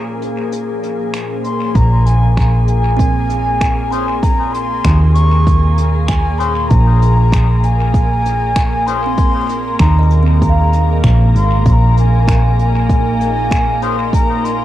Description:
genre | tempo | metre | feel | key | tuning
ambient dub | 97 BPM | 4/4 | swing 57% on 16ths | Bb minor | A4 = 436 Hz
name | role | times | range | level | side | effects
soft additive organ-like pad | sustained chords | 0.0-14.6 s | Bb2 to C5 | -21 LUFS | left 1 dB | ensemble chorus, built-in reverb, cassette tape
hollow-body short-scale fingered electric bass | bass | 0.0-14.6 s | Ab1 to Eb2 | -13 LUFS | equal | tube saturation
bubbling stepped-filter texture | texture | 0.0-1.8 s | F3 to Bb4 | -34 LUFS | equal | none
jazz brush drum kit | drums | 0.2-14.6 s | finger snaps, hi-hat | -30 LUFS | equal | cassette tape, dub echo
breathy mellow wooden flute | melody | 1.4-14.6 s | Ab5 to Db6 | -19 LUFS | left 1 dB | dub echo
electronic kick drum | drums | 1.8-14.3 s | none | -15 LUFS | equal | overdrive, cassette tape
kalimba | arpeggios | 3.0-13.0 s | C4 to C6 | -26 LUFS | right 10 dB | cassette tape, tape echo
melodica | stabs | 3.9-9.0, 13.8-14.0 s | Db4 to C5 | -28 LUFS | left 9 dB | cassette tape, dub echo
room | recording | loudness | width
small room ambience | home recording on cassette | -11 LUFS | side -13 dB against mid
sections
0.0-1.8 A section; 1.8-14.6 B section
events
filter sweep on ambient pad 0.0-1.8; filter sweep 0.0-1.8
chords
0.0 Bbm9; 1.8 Bb7sus2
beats
0.52 1.14 | 1.76 2.38 3.00 3.62 | 4.23 4.85 5.47 6.09 | 6.71 7.33 7.95 8.56 | 9.18 9.80 10.42 11.04 | 11.66 12.28 12.89 13.51 | 14.13

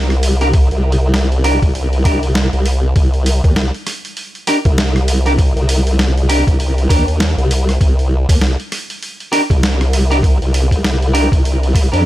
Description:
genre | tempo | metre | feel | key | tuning
glitch hop | 99 BPM | 4/4 | swing 59% on 16ths | C minor | A4 = 440 Hz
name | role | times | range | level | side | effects
formant-sweep wobble bass | bass | 0.0-12.1 s | C2 to F2 | -14 LUFS | equal | chorus
boom bap sampler-style drum kit | drums | 0.1-12.0 s | hi-hat, rim click, snare drum | -21 LUFS | equal | small room reverb
clean electric guitar | stabs | 0.4-12.0 s | D4 to Bb4 | -20 LUFS | equal | sidechain pumping, digital delay
electronic kick drum | drums | 0.5-11.9 s | none | -14 LUFS | equal | small room reverb
room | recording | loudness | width
little or no reverb | none | -12 LUFS | side -15 dB against mid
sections
0.0-12.1 A section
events
none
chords
0.0 Cm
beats
| 0.54 1.14 1.75 2.35 | 2.96 3.57 4.17 4.78 | 5.38 5.99 6.60 7.20 | 7.81 8.41 9.02 9.63 | 10.23 10.84 11.45 12.05

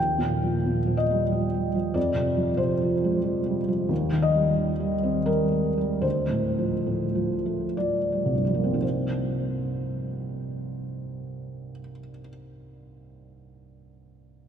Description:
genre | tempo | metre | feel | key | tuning
neoclassical minimalist piano | 55-93 BPM | 3/4 | rubato | C minor | A4 = 439 Hz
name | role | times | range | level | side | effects
felt-muted upright piano | solo | 0.0-14.5 s | C2 to G5 | -24 LUFS | equal | none
room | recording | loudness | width
wet cathedral reverb, RT60 5.4 s | recorded in a church or concert hall | -23 LUFS | side -8 dB against mid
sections
0.0-8.8 A section; 8.8-14.5 B section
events
slowing down 2.9-8.8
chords
0.0 Ebadd9; 2.0 Fm; 3.9 Cm/Eb; 6.0 Dm7; 8.8 Cm7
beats
0.65 1.31 | 1.96 2.61 3.25 | 3.90 4.58 5.28 | 6.04 6.86 7.77 | 8.82 9.81 10.81 | 11.82 12.81 13.81

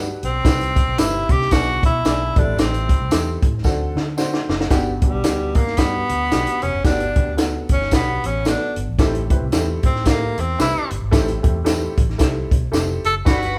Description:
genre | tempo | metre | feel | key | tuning
uptempo 1960s-style soul | 112 BPM | 4/4 | swing 59% on 8ths | G major | A4 = 440 Hz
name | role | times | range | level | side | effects
dark upright piano | accompaniment | 0.0-13.6 s | G2 to D5 | -29 LUFS | equal | none
vintage muted fingered electric bass | bass | 0.0-13.6 s | F1 to D3 | -27 LUFS | equal | none
breathy tenor saxophone | melody | 0.2-13.6 s | G3 to A4 | -24 LUFS | equal | none
compact cocktail drum kit | drums | 0.2-13.6 s | hi-hat, kick drum, snare drum | -21 LUFS | equal | none
tambourine | percussion | 0.5-13.4 s | none | -38 LUFS | equal | none
warm studio violin section | second line | 13.3-13.6 s | B4 to B5 | -32 LUFS | equal | none
room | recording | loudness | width
moderate large studio reverb, RT60 1.1 s | band playing live in one room | -19 LUFS | mono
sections
0.0-4.7 A section; 4.7-13.6 B section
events
drum fill 3.6-4.7; tenor saxophone solo 4.7-13.6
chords
0.4 Cmaj7; 1.5 E7/B; 2.3 Am7; 3.6 D7; 4.7 Gmaj7; 9.0 Am7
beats
| 0.45 0.98 1.51 2.05 | 2.58 3.11 3.65 4.18 | 4.71 5.25 5.78 6.32 | 6.85 7.38 7.92 8.45 | 8.99 9.52 10.06 10.59 | 11.13 11.66 12.20 12.73 | 13.26

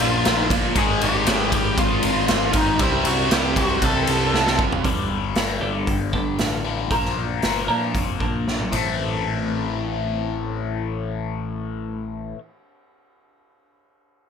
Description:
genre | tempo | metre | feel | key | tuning
quiet-loud alternative rock | 116 BPM | 4/4 | straight | unclear | A4 = 441 Hz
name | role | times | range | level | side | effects
octave-fuzz lead guitar | melody | 0.0-4.6 s | D#4 to A5 | -23 LUFS | equal | distortion, slapback echo
cranked stack guitar | riff | 0.0-12.4 s | G2 to C4 | -26 LUFS | left 13 dB | overdrive, phaser
thick fuzz guitar | riff | 0.0-4.8 s | G#2 to C4 | -25 LUFS | right 14 dB | distortion
growling picked electric bass | bass | 0.0-12.3 s | F1 to Bb2 | -28 LUFS | right 1 dB | overdrive
raw garage drum kit | drums | 0.0-8.8 s | hi-hat, kick drum, ride cymbal, snare drum, toms | -23 LUFS | equal | none
twelve-string electric guitar | arpeggios | 4.8-12.4 s | A2 to Bb4 | -28 LUFS | right 2 dB | phaser
room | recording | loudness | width
moderate studio ambience, RT60 0.5 s | none | -19 LUFS | side -7 dB against mid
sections
0.0-4.8 A section; 4.8-9.0 B section; 9.0-13.1 C section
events
drum fill 4.3-4.8, 8.5-9.0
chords
0.0 Bb5; 0.8 G#5; 2.8 C; 4.8 G; 6.9 Bb; 8.7 Am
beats
0.25 | 0.76 1.27 1.77 2.28 | 2.79 3.31 3.82 4.33 | 4.84 5.36 5.88 6.39 | 6.91 7.43 7.95 8.46 | 8.98 9.50 10.02 10.54 | 11.06 11.58 12.10

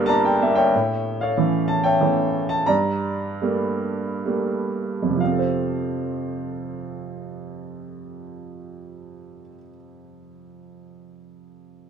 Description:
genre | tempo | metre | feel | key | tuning
classical, lyrical solo piano | 57-95 BPM | 3/4 | rubato | F major | A4 = 443 Hz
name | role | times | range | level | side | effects
clear baby grand piano | solo | 0.0-11.9 s | G1 to Bb5 | -21 LUFS | right 1 dB | none
room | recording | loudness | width
light reverb | minimal, uncompressed stereo recording | -20 LUFS | side -7 dB against mid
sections
0.7-5.2 A section; 5.2-11.1 B section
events
grand piano fill 0.0-0.7; slowing down 0.7-5.2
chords
0.0 Gmadd9; 0.7 A; 2.7 Gmadd9; 5.2 F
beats
0.09 | 0.74 1.38 2.01 | 2.67 3.42 4.25 | 5.20 6.20 7.19 | 8.16 9.12 10.12

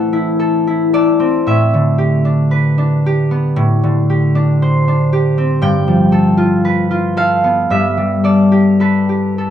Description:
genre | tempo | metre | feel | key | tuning
classical, solo harp piece | 50-60 BPM | 4/4 | rubato | unclear | A4 = 440 Hz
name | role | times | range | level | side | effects
concert harp | solo | 0.0-9.5 s | G2 to G5 | -11 LUFS | equal | none
room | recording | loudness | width
moderate stone room reverb, RT60 1.1 s | dark, warm production, nothing above 11.0 kHz | -11 LUFS | side -10 dB against mid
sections
0.0-9.5 A section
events
none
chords
0.0 Am6; 1.5 G69/A; 3.6 C69/A; 5.6 G9; 7.7 Gadd9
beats
0.39 | 1.46 2.52 3.58 4.64 | 5.65 6.67 7.73 8.82

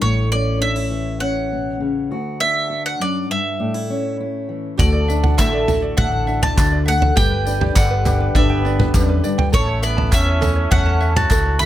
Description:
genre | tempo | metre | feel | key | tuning
indie folk with a building arrangement | 101 BPM | 4/4 | straight | D major | A4 = 442 Hz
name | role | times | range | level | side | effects
bowl-back mandolin | melody | 0.0-11.7 s | C#5 to B5 | -22 LUFS | equal | none
fingerpicked steel-string acoustic guitar | accompaniment | 0.0-9.5 s | D2 to G4 | -22 LUFS | left 1 dB | none
hollow-body short-scale fingered electric bass | bass | 0.0-11.7 s | G1 to E2 | -20 LUFS | equal | none
picked twelve-string acoustic guitar | accompaniment | 4.8-11.7 s | A2 to B4 | -28 LUFS | left 3 dB | wide subtle chorus
ukulele | arpeggios | 4.8-11.7 s | F#4 to A5 | -27 LUFS | right 6 dB | none
unplugged drum kit | drums | 4.8-11.4 s | kick drum, toms | -19 LUFS | equal | none
tambourine | percussion | 4.8-11.7 s | none | -34 LUFS | left 10 dB | none
group handclap | percussion | 5.4-11.4 s | none | -30 LUFS | right 4 dB | none
warm trumpet | second line | 8.4-11.7 s | A3 to F#4 | -26 LUFS | right 2 dB | none
pedal harmonium | sustained chords | 9.5-11.7 s | D3 to F#4 | -31 LUFS | equal | none
room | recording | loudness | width
small room ambience | none | -16 LUFS | side -13 dB against mid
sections
0.0-4.8 A section; 4.8-11.7 B section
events
none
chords
0.0 A; 2.1 D; 3.6 A; 4.8 Dadd9; 7.2 G; 9.5 A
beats
| 0.02 0.62 1.21 1.81 | 2.41 3.01 3.60 4.20 | 4.79 5.39 5.98 6.58 | 7.17 7.76 8.35 8.94 | 9.54 10.13 10.72 11.31

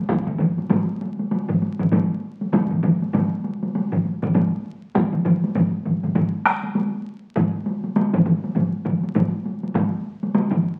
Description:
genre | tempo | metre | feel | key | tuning
japanese traditional, taiko drum ensemble | 100 BPM | 4/4 | swing 60% on 16ths | none | none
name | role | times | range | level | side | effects
solo taiko drums | percussion | 0.1-10.5 s | none | -26 LUFS | equal | none
taiko ensemble | percussion | 0.1-10.6 s | none | -30 LUFS | equal | none
taiko ensemble | percussion | 0.1-10.6 s | none | -24 LUFS | equal | none
taiko ensemble | percussion | 0.1-9.9 s | none | -29 LUFS | equal | none
room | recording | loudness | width
wet large studio reverb, RT60 0.9 s | very old 78 rpm record, vinyl crackle | -22 LUFS | mono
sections
0.0-9.7 A section; 9.7-10.8 B section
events
speeding up 0.0-10.8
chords
none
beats
| 0.09 0.70 1.31 1.92 | 2.53 3.14 3.74 4.35 | 4.95 5.55 6.16 6.76 | 7.36 7.96 8.55 9.15 | 9.75 10.34

